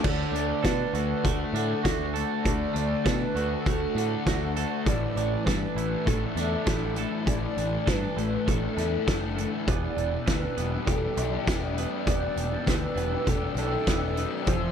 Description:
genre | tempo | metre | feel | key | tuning
rock, shoegaze and dream pop | 100 BPM | 4/4 | straight | D major | A4 = 440 Hz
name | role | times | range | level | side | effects
pure sine lead | melody | 0.0-14.7 s | A4 to D5 | -33 LUFS | right 1 dB | chorus, phaser, tape echo
twelve-string electric guitar | arpeggios | 0.0-14.7 s | E3 to A4 | -37 LUFS | right 12 dB | wide subtle chorus, tape echo
fuzz guitar | riff | 0.0-14.7 s | E2 to F#4 | -32 LUFS | left 10 dB | distortion, lush chorus
twangy electric guitar | riff | 0.0-14.7 s | A2 to B4 | -35 LUFS | right 12 dB | reverse reverb
growling picked electric bass | bass | 0.0-14.7 s | E1 to B2 | -31 LUFS | equal | overdrive
loose indie drum kit | drums | 0.0-14.6 s | crash cymbal, hi-hat, kick drum, snare drum | -28 LUFS | equal | none
chorused pulse-width pad | sustained chords | 9.9-14.7 s | A4 to E6 | -37 LUFS | equal | phaser
room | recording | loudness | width
light reverb, small room ambience | none | -24 LUFS | side -8 dB against mid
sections
0.1-14.7 A section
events
none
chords
0.1 D; 4.9 Asus4; 9.7 Em7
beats
| 0.05 0.65 1.25 1.85 | 2.45 3.06 3.66 4.26 | 4.86 5.46 6.06 6.67 | 7.27 7.87 8.47 9.07 | 9.67 10.28 10.88 11.48 | 12.08 12.68 13.28 13.88 | 14.48

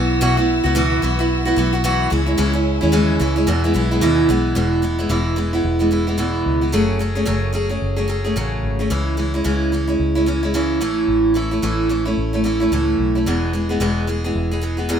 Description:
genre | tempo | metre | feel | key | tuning
acoustic pop | 110 BPM | 4/4 | swing 60% on 16ths | E major | A4 = 442 Hz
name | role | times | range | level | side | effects
picked steel-string acoustic guitar | accompaniment | 0.0-15.0 s | E2 to G#4 | -18 LUFS | right 1 dB | none
warm studio string section | sustained chords | 0.0-4.5 s | B4 to E6 | -28 LUFS | equal | none
vintage muted fingered electric bass | bass | 0.0-15.0 s | E1 to E2 | -22 LUFS | left 1 dB | none
room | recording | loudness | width
light reverb | minimal, uncompressed stereo recording | -16 LUFS | side -8 dB against mid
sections
0.0-4.6 A section; 4.6-15.0 B section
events
none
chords
0.0 Bsus4; 2.1 C#m; 3.5 E; 6.7 F#madd9; 8.9 C#m; 10.8 A; 13.3 E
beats
| 0.21 0.76 1.30 1.84 | 2.38 2.93 3.47 4.01 | 4.55 5.10 5.64 6.19 | 6.73 7.28 7.82 8.36 | 8.91 9.45 10.00 10.54 | 11.09 11.63 12.17 12.72 | 13.26 13.81 14.35 14.89

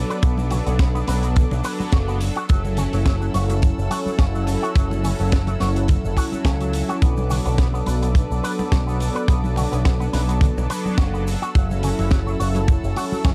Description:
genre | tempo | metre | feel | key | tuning
nu-disco, nu disco | 106 BPM | 4/4 | swing 54% on 16ths | B minor | A4 = 440 Hz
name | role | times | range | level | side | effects
warm analog pad | accompaniment | 0.0-13.3 s | F#3 to A4 | -29 LUFS | equal | chorus, sidechain pumping, delay
clear studio string section | sustained chords | 0.0-13.3 s | A4 to E6 | -38 LUFS | equal | sidechain pumping
picked electric bass with an envelope filter | bass | 0.0-13.3 s | F#1 to C#2 | -25 LUFS | equal | tube saturation
electric guitar with an envelope filter | riff | 0.1-13.3 s | F#3 to B4 | -32 LUFS | equal | lush chorus, delay
tight funk drum kit | drums | 0.1-13.3 s | hi-hat, shaker, snare drum | -34 LUFS | equal | none
kick drum | drums | 0.2-13.3 s | none | -20 LUFS | equal | none
congas | percussion | 0.4-13.2 s | none | -33 LUFS | equal | none
room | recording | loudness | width
studio reverb | dark, warm production | -20 LUFS | mono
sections
0.0-13.3 A section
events
none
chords
0.0 Bm7; 2.2 F#m7; 7.0 Bm7; 11.3 F#m7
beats
| 0.23 0.79 1.36 1.93 | 2.49 3.06 3.62 4.19 | 4.76 5.32 5.89 6.45 | 7.02 7.59 8.15 8.72 | 9.29 9.85 10.42 10.98 | 11.55 12.12 12.68 13.25

